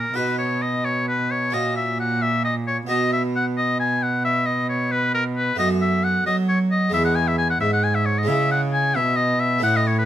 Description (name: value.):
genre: classical, baroque-style sonata movement with continuo.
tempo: 89 BPM (dotted quarters).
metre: 12/8.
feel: rubato.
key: B major.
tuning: A4 = 441 Hz.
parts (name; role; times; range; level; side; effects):
bright oboe; melody; 0.0-10.1 s; A#4 to G#5; -22 LUFS; left 2 dB; none.
harpsichord; accompaniment; 0.0-10.1 s; E2 to G#4; -28 LUFS; right 2 dB; none.
warm cello; bass; 0.0-10.1 s; E2 to F#3; -23 LUFS; right 2 dB; none.
room: light reverb.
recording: minimal, uncompressed stereo recording.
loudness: -19 LUFS.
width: side -11 dB against mid.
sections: 0.0-10.1 A section.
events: none.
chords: 0.2 B; 1.5 F#/A#; 2.9 B5; 5.6 B5/F#; 6.9 E; 8.3 C#m.